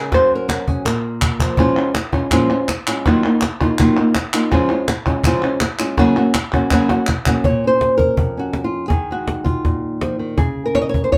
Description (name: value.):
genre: flamenco.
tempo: 164 BPM.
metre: 4/4.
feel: straight.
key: Bb minor.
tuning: A4 = 440 Hz.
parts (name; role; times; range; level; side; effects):
flamenco guitar; melody; 0.0-11.2 s; F2 to Eb5; -19 LUFS; equal; none.
cajon; percussion; 0.1-11.2 s; none; -22 LUFS; equal; none.
palmas hand claps; percussion; 0.1-7.4 s; none; -26 LUFS; equal; none.
room: wet small room reverb, RT60 0.5 s.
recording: band playing live in one room.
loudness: -18 LUFS.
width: mono.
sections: 0.0-1.6 A section; 1.6-7.4 B section; 7.4-11.2 C section.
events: drum fill 0.9-1.6, 6.9-7.4.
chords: 0.1 Gb; 0.9 Bb5; 1.6 Bbm7; 3.1 Ebmadd9; 4.5 Db; 6.0 Gb; 7.4 Bbm; 8.9 Ebmadd9; 10.4 Db5.